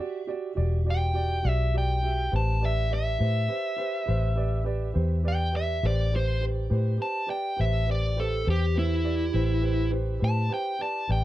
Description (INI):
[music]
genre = slow blues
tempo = 68 BPM (dotted quarters)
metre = 12/8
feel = straight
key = unclear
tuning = A4 = 440 Hz
[part]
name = dark upright piano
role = accompaniment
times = 0.0-11.2 s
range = F#4 to E5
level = -34 LUFS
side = right 5 dB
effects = none
[part]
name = vintage muted fingered electric bass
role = bass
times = 0.6-11.2 s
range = E1 to A2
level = -25 LUFS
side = left 1 dB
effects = none
[part]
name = dark smooth lead guitar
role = melody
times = 0.9-11.2 s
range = E4 to A5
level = -30 LUFS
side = equal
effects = overdrive
[sound]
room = little or no reverb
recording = dry, close 1970s-style studio recording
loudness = -24 LUFS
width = side -14 dB against mid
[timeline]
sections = 0.0-11.2 A section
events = lead electric guitar solo 0.0-11.2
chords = 0.0 Em7; 2.3 Am7